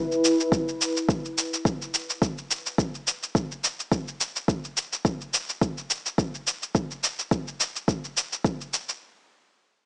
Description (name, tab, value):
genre	organic downtempo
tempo	106 BPM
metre	4/4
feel	swing 55% on 16ths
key	none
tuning	none
part	shaker	drums	0.1-9.0 s	none	-26 LUFS	equal	studio reverb, cassette tape
part	electronic kick drum	drums	0.5-8.6 s	none	-24 LUFS	equal	overdrive, studio reverb, cassette tape
room	light reverb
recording	home recording on cassette, small speaker sound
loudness	-24 LUFS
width	side -30 dB against mid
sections	0.0-9.0 A section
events	none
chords	none